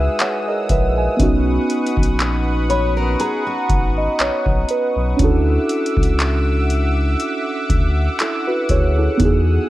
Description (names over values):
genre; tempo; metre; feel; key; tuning
contemporary R&B; 60 BPM; 4/4; swing 54% on 16ths; unclear; A4 = 440 Hz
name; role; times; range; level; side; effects
muted felt-like synth keys; accompaniment; 0.0-9.7 s; G#3 to B5; -20 LUFS; right 2 dB; chorus
lush unison pad; sustained chords; 0.0-9.7 s; G#4 to E6; -26 LUFS; equal; chorus
sub bass with octave; bass; 0.0-9.6 s; G#1 to E2; -19 LUFS; equal; none
booming analog drum machine; drums; 0.2-9.4 s; handclaps, hi-hat, kick drum; -19 LUFS; equal; none
fingerpicked steel-string acoustic guitar; arpeggios; 2.7-4.9 s; F#4 to C#5; -25 LUFS; left 4 dB; ping-pong delay
room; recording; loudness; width
little or no reverb; worn, warbling old tape, cassette tape, warbly pitch drift; -15 LUFS; side -16 dB against mid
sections
0.0-9.7 A section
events
synth keys fill 2.2-5.2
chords
0.0 Emaj9; 1.2 Bmaj9; 5.2 Dmaj9